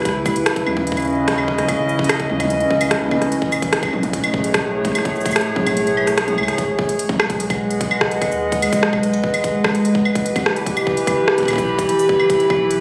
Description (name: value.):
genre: IDM.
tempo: 147 BPM.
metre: 4/4.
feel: straight.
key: G# phrygian.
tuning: A4 = 439 Hz.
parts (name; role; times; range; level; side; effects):
warbly tape-like pad; sustained chords; 0.0-12.8 s; A2 to B5; -20 LUFS; equal; chorus, built-in reverb.
organic electronic drum kit; drums; 0.0-12.8 s; cabasa, claves, hi-hat, rim click, toms; -24 LUFS; equal; overdrive, tape echo.
warm sub bass; bass; 0.1-12.8 s; E1 to D#2; -33 LUFS; equal; none.
electronic kick drum; drums; 0.1-12.6 s; none; -28 LUFS; equal; overdrive.
room: moderate plate reverb, RT60 1.7 s.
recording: recorded on a phone in the room, studio reverb, compression.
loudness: -18 LUFS.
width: mono.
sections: 0.0-6.6 A section; 6.6-12.8 A section.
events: kick drops out 5.8-6.6.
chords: 0.1 C#m7; 3.3 Amaj7; 6.6 G#m7; 9.8 Em.